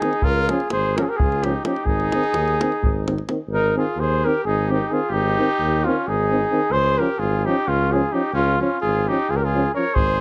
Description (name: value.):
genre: balkan folk, Balkan brass band.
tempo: 259 BPM (eighths).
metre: 7/8.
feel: straight.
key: Ab major.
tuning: A4 = 439 Hz.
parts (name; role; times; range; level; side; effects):
warm flugelhorn; melody; 0.0-10.2 s; F4 to Db5; -24 LUFS; equal; none.
warm trumpet; second line; 0.0-10.2 s; Db4 to Bb4; -30 LUFS; equal; none.
mellow euphonium; accompaniment; 0.0-9.8 s; C4 to Db4; -29 LUFS; equal; none.
mellow euphonium; accompaniment; 0.0-9.8 s; Eb3 to F3; -30 LUFS; equal; none.
davul; percussion; 0.0-3.4, 10.0-10.1 s; none; -26 LUFS; equal; none.
warm tuba; bass; 0.2-10.2 s; Ab1 to Eb2; -26 LUFS; equal; none.
room: small room reverb.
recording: dry, close 1970s-style studio recording.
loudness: -21 LUFS.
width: mono.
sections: 0.0-3.5 A section; 3.5-10.2 A section.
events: none.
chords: 0.2 Db; 1.9 Ab; 6.7 Db.